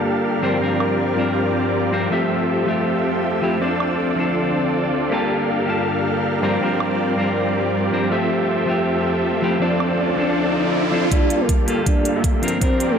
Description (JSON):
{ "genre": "future bass", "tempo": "160 BPM", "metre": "4/4", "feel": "swing 55% on 16ths, half-time", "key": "F major", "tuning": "A4 = 440 Hz", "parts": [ { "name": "clean electric guitar", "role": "accompaniment", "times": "0.0-13.0 s", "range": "G2 to A5", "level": "-22 LUFS", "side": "left 2 dB", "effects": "sidechain pumping, digital delay" }, { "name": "ethereal airy pad", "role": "sustained chords", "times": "0.0-13.0 s", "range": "D2 to A5", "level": "-28 LUFS", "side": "right 1 dB", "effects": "ensemble chorus, built-in reverb, sidechain pumping" }, { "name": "supersaw chords", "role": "riff", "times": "0.0-13.0 s", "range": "G3 to F5", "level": "-21 LUFS", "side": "right 1 dB", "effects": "sidechain pumping, low-pass filter, digital delay" }, { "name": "electronic woodblock and hi-hat", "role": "drums", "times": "0.8-0.9, 3.8-3.9, 6.8-6.9, 9.8-12.9 s", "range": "none", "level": "-28 LUFS", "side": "right 4 dB", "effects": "studio ambience" }, { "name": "riser", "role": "sound effects", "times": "9.3-13.0 s", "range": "none", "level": "-26 LUFS", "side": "right 3 dB", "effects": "none" }, { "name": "soft octave-layered synth lead", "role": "melody", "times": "11.1-13.0 s", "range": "A4 to D5", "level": "-23 LUFS", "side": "equal", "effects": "chorus, tremolo, sidechain pumping, ping-pong delay" }, { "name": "electronic kick drum", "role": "drums", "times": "11.1-12.7 s", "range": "none", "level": "-19 LUFS", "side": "equal", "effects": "studio ambience" } ], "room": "moderate lush hall reverb, RT60 2.1 s", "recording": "none", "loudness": "-17 LUFS", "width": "side -7 dB against mid", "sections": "0.0-11.1 A section; 11.1-13.0 B section", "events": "riser 9.3-11.1, 11.1-13.0; build-up 11.1-13.0; filter sweep on supersaw synth 11.1-13.0; filter sweep on soft synth lead 11.1-13.0", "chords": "0.4 C9sus4/G; 2.1 Fmaj9; 3.6 Dm7; 5.1 Gm9; 6.4 C9sus4/G; 8.1 Fmaj9; 9.6 Dm7; 11.1 Gm9; 12.4 C9sus4/G" }